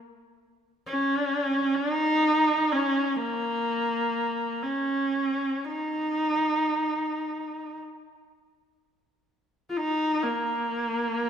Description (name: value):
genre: mongolian traditional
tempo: free time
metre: none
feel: none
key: Bb yu mode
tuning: A4 = 439 Hz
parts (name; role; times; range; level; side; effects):
- clear horsehead fiddle; solo; 0.9-11.3 s; Bb3 to F4; -24 LUFS; equal; none
room: moderate concert hall reverb, RT60 1.9 s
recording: minimal, uncompressed stereo recording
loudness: -24 LUFS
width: side -8 dB against mid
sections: 0.1-11.3 A section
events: none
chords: none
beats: free time